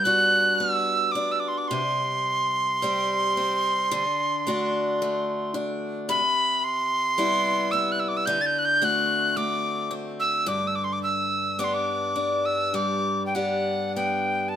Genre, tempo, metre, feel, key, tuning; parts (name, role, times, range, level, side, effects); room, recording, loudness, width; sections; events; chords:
celtic folk, Celtic slow air; 54 BPM; 4/4; rubato; G major; A4 = 438 Hz
breathy bright tin whistle; melody; 0.0-14.6 s; F#5 to A6; -23 LUFS; right 1 dB
picked steel-string acoustic guitar; accompaniment; 0.0-14.6 s; G2 to G4; -28 LUFS; left 1 dB
moderate studio reverb, RT60 1.0 s; band playing live in one room; -22 LUFS; side -10 dB against mid
0.0-14.6 A section
0.0 Gmaj7; 1.7 C5; 3.9 D; 6.1 Cmaj7; 10.5 G